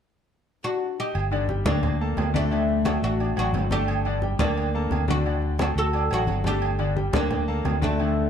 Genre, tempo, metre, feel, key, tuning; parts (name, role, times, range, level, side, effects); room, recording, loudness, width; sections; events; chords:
latin, salsa; 175 BPM; 4/4; straight; G harmonic minor; A4 = 440 Hz
oud; melody; 0.6-8.3 s; A3 to A4; -27 LUFS; left 1 dB; plate reverb
fingered electric bass; bass; 1.1-8.3 s; G1 to D2; -26 LUFS; equal
agogo bells and timbales; percussion; 1.1-8.2 s; -32 LUFS; right 8 dB
congas; percussion; 1.1-8.3 s; -29 LUFS; left 1 dB
clear concert grand piano; accompaniment; 1.3-8.3 s; D3 to D6; -29 LUFS; left 4 dB
light reverb; dark, warm production, lossy compression artefacts; -22 LUFS; side -8 dB against mid
0.0-1.1 A section; 1.1-8.3 B section
0.0 D; 1.1 Gmadd9; 2.5 D; 3.9 Gmadd9; 5.3 D; 6.6 Gmadd9